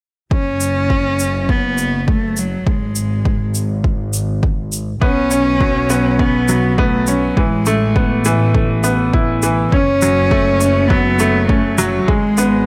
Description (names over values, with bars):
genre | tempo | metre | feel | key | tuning
piano and strings electronica | 102 BPM | 4/4 | straight | F# minor | A4 = 440 Hz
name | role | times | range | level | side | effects
warm cello | melody | 0.3-12.7 s | F#3 to C#4 | -20 LUFS | equal | none
warm studio double bass section | bass | 0.3-12.7 s | F#1 to B1 | -22 LUFS | equal | sidechain pumping
electronic kick drum | drums | 0.3-12.2 s | none | -19 LUFS | equal | none
shaker | drums | 0.6-12.5 s | none | -25 LUFS | equal | none
clear grand piano | riff | 5.0-12.7 s | E3 to E4 | -19 LUFS | equal | none
room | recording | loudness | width
light reverb, studio ambience | none | -16 LUFS | mono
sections
0.3-12.7 A section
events
none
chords
0.3 F#5; 2.7 N.C.; 5.0 Bsus2; 7.4 Asus2; 9.7 F#m; 12.1 E/G# (rootless)